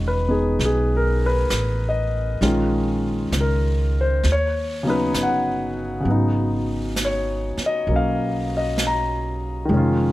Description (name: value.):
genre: jazz ballad.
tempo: 66 BPM.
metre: 4/4.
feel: swing 67% on 8ths.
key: unclear.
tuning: A4 = 440 Hz.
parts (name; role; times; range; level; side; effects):
warm concert grand piano; accompaniment; 0.0-10.1 s; Db3 to Bb5; -21 LUFS; left 1 dB; none.
upright bass; bass; 0.0-10.1 s; E1 to Eb2; -23 LUFS; right 1 dB; none.
jazz brush drum kit; drums; 0.6-10.1 s; brushed snare drum, hi-hat, snare drum; -30 LUFS; right 2 dB; none.
room: little or no reverb.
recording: none.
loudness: -19 LUFS.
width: side -16 dB against mid.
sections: 0.0-10.1 A section.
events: none.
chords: 0.0 E69; 2.4 Bbm7; 4.2 Eb7alt; 6.1 Abm9.